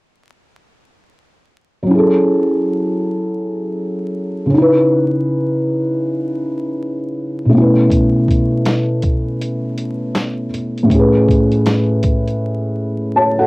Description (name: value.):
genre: lo-fi hip hop.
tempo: 80 BPM.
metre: 4/4.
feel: swing 62% on 16ths.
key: F# dorian.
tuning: A4 = 440 Hz.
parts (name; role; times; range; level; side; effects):
felt-muted upright piano; accompaniment; 1.8-13.5 s; A2 to A5; -14 LUFS; equal; cassette tape.
boom bap sampler-style drum kit; drums; 7.9-12.4 s; handclaps, hi-hat, kick drum, snare drum; -18 LUFS; equal; vintage 12-bit sampler grit, cassette tape.
room: moderate booth ambience, RT60 0.2 s.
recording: home recording on cassette, vinyl crackle.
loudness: -14 LUFS.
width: side -23 dB against mid.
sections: 1.9-13.5 A section.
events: break 12.4-13.5.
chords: 1.9 F#m7; 4.5 C#m9; 7.5 B9sus4; 10.9 Amaj7.